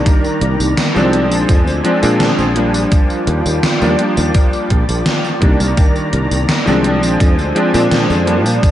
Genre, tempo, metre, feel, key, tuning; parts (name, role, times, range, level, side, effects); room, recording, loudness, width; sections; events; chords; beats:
vaporwave; 84 BPM; 4/4; straight; A4 = 440 Hz
warm electric grand piano; accompaniment; 0.0-8.7 s; Eb3 to D4; -16 LUFS; equal; ensemble chorus, tape echo
soft string machine; sustained chords; 0.0-8.7 s; Eb3 to Bb5; -21 LUFS; equal; ensemble chorus, vintage 12-bit sampler grit
electronic kick drum; drums; 0.1-8.7 s; -12 LUFS; equal; overdrive
gated 80s digital drum machine; drums; 0.1-8.7 s; hi-hat, snare drum, tambourine; -20 LUFS; equal; gated reverb, gated reverb snare, overdrive
sustaining fretless electric bass; bass; 0.4-8.6 s; Bb1 to Bb2; -17 LUFS; equal; tube saturation
light reverb; nothing above 10.7 kHz; -11 LUFS; side -12 dB against mid
0.0-8.7 A section
0.0 Cm9; 1.1 Bb9; 2.9 Ebmaj9; 5.4 Cm9; 6.8 Bb9
| 0.06 0.78 1.49 2.20 | 2.92 3.63 4.35 5.06 | 5.78 6.49 7.20 7.92 | 8.63